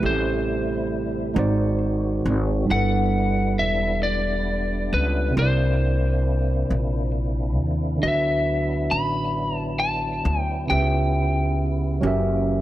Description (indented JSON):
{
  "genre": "R&B",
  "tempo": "45 BPM (dotted quarters)",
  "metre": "6/8",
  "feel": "straight",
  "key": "D major",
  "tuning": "A4 = 439 Hz",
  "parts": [
    { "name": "lightly driven lead guitar", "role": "melody", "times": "0.0-11.7 s", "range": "B4 to B5", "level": "-26 LUFS", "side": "left 2 dB", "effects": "tape echo" },
    { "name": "overdriven tine electric piano", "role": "accompaniment", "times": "0.0-12.6 s", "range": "C3 to E5", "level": "-25 LUFS", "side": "right 3 dB", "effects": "none" },
    { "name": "percussive tonewheel organ", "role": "sustained chords", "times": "0.0-12.6 s", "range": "C3 to F#4", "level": "-32 LUFS", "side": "left 1 dB", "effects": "overdrive, chorus vibrato, slow rotary speaker" },
    { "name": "upright bass", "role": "bass", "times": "0.0-12.6 s", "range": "E1 to Eb2", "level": "-24 LUFS", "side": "equal", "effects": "none" }
  ],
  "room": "light reverb",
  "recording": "none",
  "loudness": "-20 LUFS",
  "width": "side -14 dB against mid",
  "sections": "0.0-12.6 A section",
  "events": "none",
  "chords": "0.0 Am7; 1.4 G#7#11; 2.7 G6; 5.4 C9; 8.0 D69; 10.7 C#m7b5; 12.0 F#7b9"
}